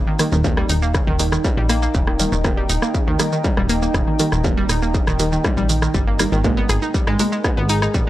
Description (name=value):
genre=melodic techno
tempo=120 BPM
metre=4/4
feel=straight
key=unclear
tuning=A4 = 439 Hz
part: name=deep dark ambient pad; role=sustained chords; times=0.1-8.1 s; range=G#3 to A#5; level=-26 LUFS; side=right 1 dB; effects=chorus, built-in reverb, sidechain pumping
part: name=analog pluck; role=arpeggios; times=0.0-8.1 s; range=C#3 to G#4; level=-23 LUFS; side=equal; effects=chorus, sidechain pumping, analog delay
part: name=filtered dub chord stab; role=stabs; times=0.0-8.1 s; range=B2 to A#3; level=-26 LUFS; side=equal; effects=phaser, analog chorus, sidechain pumping, analog delay
part: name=plucky analog bass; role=bass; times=0.0-8.0 s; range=D#1 to G#2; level=-21 LUFS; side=equal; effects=tube saturation, sidechain pumping
part: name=deep house drum kit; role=drums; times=0.2-8.0 s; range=hi-hat, rim click, shaker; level=-24 LUFS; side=equal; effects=none
part: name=electronic kick drum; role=drums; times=0.4-8.0 s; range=none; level=-20 LUFS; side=equal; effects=distortion
room=little or no reverb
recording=dry, gritty hardware recording, transformer saturation, cassette tape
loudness=-16 LUFS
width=side -14 dB against mid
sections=0.0-8.1 A section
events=none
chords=0.0 D#; 6.4 G#madd9